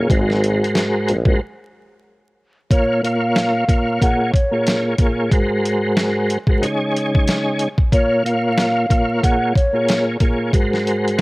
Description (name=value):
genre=hip hop, boom-bap hip-hop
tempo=92 BPM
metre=4/4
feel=swing 58% on 16ths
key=Bb minor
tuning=A4 = 440 Hz
part: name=tonewheel organ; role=accompaniment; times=0.0-11.2 s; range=Ab2 to Ab5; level=-18 LUFS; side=equal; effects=chorus vibrato, fast rotary speaker, high-pass filter, low-pass filter, cassette tape
part: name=warm tuba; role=bass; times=0.0-1.3 s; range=Ab1 to Bb1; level=-20 LUFS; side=equal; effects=none
part: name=boom bap sampler-style drum kit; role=drums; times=0.1-11.2 s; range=hi-hat, kick drum, snare drum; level=-17 LUFS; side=equal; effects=none
part: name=breathy mellow concert flute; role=melody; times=2.7-10.0 s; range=Db5 to Gb5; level=-22 LUFS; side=equal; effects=high-pass filter, low-pass filter, cassette tape, tape echo
room=studio reverb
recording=home recording on cassette, vinyl crackle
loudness=-15 LUFS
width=side -22 dB against mid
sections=0.0-2.7 A section; 2.7-11.2 A section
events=break 1.4-2.7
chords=0.1 Ab7; 1.4 N.C.; 2.7 Bbm; 4.0 Bbm7; 5.3 Ab7; 6.6 Dbsus2; 7.9 Bbm; 9.2 Bbm7; 10.5 Ab7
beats=| 0.10 0.75 1.41 2.06 | 2.71 3.36 4.01 4.67 | 5.32 5.97 6.62 7.28 | 7.93 8.58 9.23 9.88 | 10.54 11.19